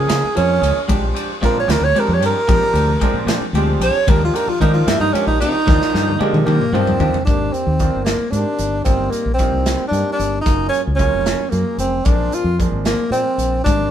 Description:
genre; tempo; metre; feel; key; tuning
electric jazz fusion; 75 BPM (dotted quarters); 6/8; straight; Bb mixolydian; A4 = 440 Hz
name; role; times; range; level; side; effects
mellow tenor saxophone; melody; 0.0-13.9 s; Ab3 to Db5; -18 LUFS; right 1 dB; none
clear concert grand piano; accompaniment; 0.0-13.9 s; Eb3 to D5; -25 LUFS; right 2 dB; none
fingered electric bass; bass; 0.0-13.9 s; F1 to Eb3; -20 LUFS; equal; none
clean electric guitar; stabs; 0.1-7.2 s; F3 to Ab4; -26 LUFS; equal; none
modern studio drum kit; drums; 0.1-13.8 s; hi-hat, kick drum, ride cymbal, snare drum, toms; -20 LUFS; equal; none
congas; percussion; 0.9-7.3, 13.7-13.9 s; none; -26 LUFS; left 5 dB; none
room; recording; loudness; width
light reverb; band playing live in one room; -14 LUFS; side -10 dB against mid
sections
0.0-7.3 A section; 7.3-13.9 B section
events
tenor saxophone solo 0.0-7.3; drum fill 5.7-7.3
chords
0.0 Db69; 0.9 Bb13; 4.1 Ebmaj9; 7.3 Abmaj9#11; 8.9 Eb69/G; 10.5 Gbmaj7; 12.1 Bb9

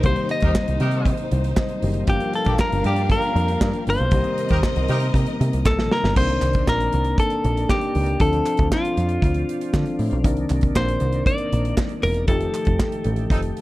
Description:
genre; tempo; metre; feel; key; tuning
disco; 118 BPM; 4/4; straight; C dorian; A4 = 440 Hz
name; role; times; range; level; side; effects
clean electric guitar; melody; 0.0-13.6 s; F4 to Eb5; -24 LUFS; left 1 dB; none
warm studio string section; second line; 0.0-6.1 s; G3 to F5; -31 LUFS; equal; none
tine electric piano; accompaniment; 0.0-13.6 s; Eb3 to Eb5; -28 LUFS; left 3 dB; none
tonewheel organ; sustained chords; 0.0-13.6 s; C3 to G4; -31 LUFS; right 1 dB; chorus vibrato, slow rotary speaker
overdriven picked electric bass; bass; 0.0-13.5 s; E1 to D3; -22 LUFS; equal; none
modern studio drum kit; drums; 0.0-13.6 s; crash cymbal, hi-hat, kick drum, snare drum; -23 LUFS; equal; none
clear horn section; stabs; 0.4-5.1, 13.3-13.4 s; C4 to D5; -31 LUFS; right 1 dB; none
group handclap; percussion; 0.6-12.9 s; none; -36 LUFS; right 3 dB; none
room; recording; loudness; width
light reverb, small room ambience; dark, warm production; -18 LUFS; side -17 dB against mid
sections
0.0-6.2 A section; 6.2-13.6 B section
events
tine electric piano fill 1.1-2.1; drum fill 5.6-6.2; band accent 12.3-13.6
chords
0.0 Cm7; 2.1 Gm7; 4.1 Cm7; 6.2 Cm9; 8.2 Dm7; 10.2 Cm9; 12.3 F9

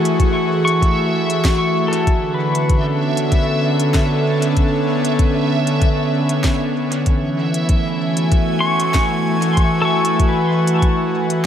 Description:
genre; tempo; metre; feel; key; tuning
ambient dub; 96 BPM; 4/4; straight; B dorian; A4 = 440 Hz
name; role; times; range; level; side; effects
airy breathy pad; sustained chords; 0.0-11.5 s; D3 to G#5; -17 LUFS; equal; chorus
pedal steel guitar; arpeggios; 0.0-4.8, 8.6-11.5 s; A4 to C#6; -22 LUFS; left 2 dB; analog chorus, diffuse ambient delay
backwards swelling texture; texture; 0.0-11.5 s; E5; -27 LUFS; right 1 dB; built-in reverb
organic electronic drum kit; drums; 0.1-11.4 s; hi-hat, snare drum; -27 LUFS; equal; dub echo
electronic kick drum; drums; 0.2-11.0 s; none; -17 LUFS; equal; none
room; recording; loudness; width
moderate plate reverb, RT60 3.2 s; dreamy mix soaked in reverb; -15 LUFS; side -9 dB against mid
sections
0.0-11.5 A section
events
none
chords
0.0 F#m9; 2.1 Bm9; 7.1 F#m9

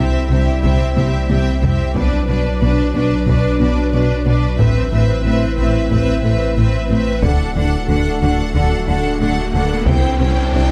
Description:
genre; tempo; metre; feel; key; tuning
cinematic, hybrid orchestral and electronic film score; 91 BPM; 4/4; straight; B phrygian; A4 = 440 Hz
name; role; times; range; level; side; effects
rich studio violin section; melody; 0.0-10.7 s; D5 to G5; -28 LUFS; equal; none
rich symphonic violin section; second line; 0.0-10.7 s; G4 to C5; -28 LUFS; equal; none
rich symphonic viola section; accompaniment; 0.0-10.7 s; C4 to E4; -28 LUFS; equal; none
warbly tape-like pad; sustained chords; 0.0-10.7 s; F#3 to C5; -25 LUFS; equal; chorus, built-in reverb
smooth synth bass; riff; 0.0-10.7 s; C2 to B3; -24 LUFS; equal; none
rich symphonic double bass section; bass; 0.0-10.6 s; A1 to D2; -25 LUFS; equal; none
soft dub sub bass; bass; 0.0-10.7 s; D1 to C2; -23 LUFS; equal; none
warm studio cello section; bass; 0.0-10.6 s; A2 to D3; -25 LUFS; equal; none
taiko ensemble; drums; 0.6-10.5 s; none; -24 LUFS; equal; none
riser; sound effects; 8.5-10.7 s; none; -29 LUFS; equal; none
room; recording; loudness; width
moderate scoring stage reverb, RT60 2.2 s; none; -16 LUFS; mono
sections
0.0-10.7 A section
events
drum fill 1.0-2.0; riser 8.5-10.7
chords
0.0 C; 2.0 Bm; 4.6 Amadd9; 7.2 D; 9.9 C

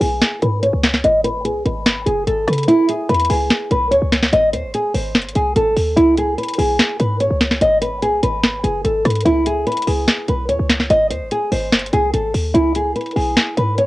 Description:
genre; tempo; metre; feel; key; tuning
hip hop, trap; 146 BPM; 4/4; half-time; C# minor; A4 = 440 Hz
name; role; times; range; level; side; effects
nylon-string guitar; melody; 0.0-13.9 s; E4 to D#5; -17 LUFS; equal; low-pass filter, cassette tape
short 808-style bass; bass; 0.0-13.9 s; F#1 to C#3; -21 LUFS; equal; none
booming analog drum machine; drums; 0.0-13.9 s; hi-hat, rim click, snare drum; -18 LUFS; equal; cassette tape
room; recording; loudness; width
moderate small room ambience, RT60 0.5 s; home recording on cassette; -14 LUFS; side -18 dB against mid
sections
0.0-13.9 A section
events
filter sweep on nylon-string guitar 0.0-2.7; kick muted 2.7-3.1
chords
0.0 C#5; 1.0 G#m; 2.7 C#m7; 4.3 G#; 6.0 C#5; 7.6 G#m; 9.3 C#5; 10.9 G#; 12.5 C#5

